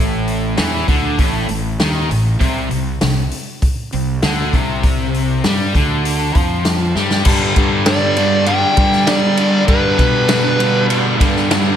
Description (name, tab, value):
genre	classic rock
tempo	99 BPM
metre	4/4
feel	straight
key	unclear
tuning	A4 = 440 Hz
part	distorted electric guitar	riff	0.0-11.8 s	G2 to G3	-17 LUFS	equal	distortion
part	fuzz fingered electric bass	bass	0.0-11.8 s	A1 to G3	-20 LUFS	equal	overdrive
part	vintage drum kit	drums	0.3-11.6 s	crash cymbal, hi-hat, kick drum, ride cymbal, snare drum	-18 LUFS	equal	none
part	dark smooth lead guitar	melody	7.9-10.9 s	B4 to G5	-17 LUFS	equal	overdrive
room	moderate scoring stage reverb, RT60 1.9 s, small room ambience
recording	big arena sound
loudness	-13 LUFS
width	side -9 dB against mid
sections	0.0-7.3 A section; 7.3-11.8 B section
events	drum fill 7.0-7.3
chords	0.0 A5; 2.4 C5; 7.3 G